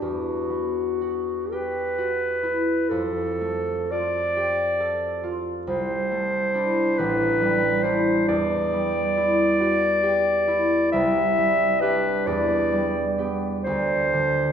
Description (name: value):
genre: classical, impressionist duo for clarinet and harp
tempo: 38-47 BPM (dotted quarters)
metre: 6/8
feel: rubato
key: unclear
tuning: A4 = 442 Hz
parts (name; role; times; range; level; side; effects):
- warm clarinet; melody; 0.0-14.5 s; F#4 to E5; -23 LUFS; equal; none
- concert harp; accompaniment; 0.0-14.5 s; A1 to A4; -24 LUFS; right 1 dB; none
room: wet scoring stage reverb, RT60 1.6 s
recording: heard from further back in the room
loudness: -20 LUFS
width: side -8 dB against mid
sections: 0.0-14.5 A section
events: none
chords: 0.0 Emadd9; 2.9 Fadd9; 5.7 C69; 7.0 A9sus4; 8.3 Emadd9; 10.9 Cadd9; 12.3 Em7; 13.6 D7(no3)